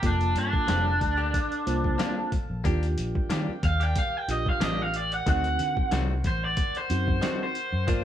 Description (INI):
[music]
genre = straight-eighth soul blues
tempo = 92 BPM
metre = 4/4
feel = swing 54% on 16ths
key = unclear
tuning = A4 = 441 Hz
[part]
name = raw garage guitar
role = melody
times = 0.0-8.0 s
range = D4 to G5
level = -28 LUFS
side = right 1 dB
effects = overdrive
[part]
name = reed electric piano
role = accompaniment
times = 0.0-8.0 s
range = Bb3 to C5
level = -34 LUFS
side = right 1 dB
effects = fast tremolo
[part]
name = warm horn section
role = sustained chords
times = 0.0-8.0 s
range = Bb3 to A5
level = -43 LUFS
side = right 1 dB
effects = none
[part]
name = vintage muted fingered electric bass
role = bass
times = 0.0-8.0 s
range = F1 to Eb3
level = -28 LUFS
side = equal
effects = none
[part]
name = trip hop sampler-style drum kit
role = drums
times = 0.0-8.0 s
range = hi-hat, kick drum, snare drum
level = -29 LUFS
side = equal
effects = overdrive
[part]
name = direct-recorded clean electric guitar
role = stabs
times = 0.7-8.0 s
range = Eb3 to G4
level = -36 LUFS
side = left 6 dB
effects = none
[sound]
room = light reverb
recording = band playing live in one room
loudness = -24 LUFS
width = side -11 dB against mid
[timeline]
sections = 0.0-8.0 A section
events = overdriven electric guitar solo 0.0-8.0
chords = 0.0 Gm7; 2.7 Ebmaj7; 5.3 D7b9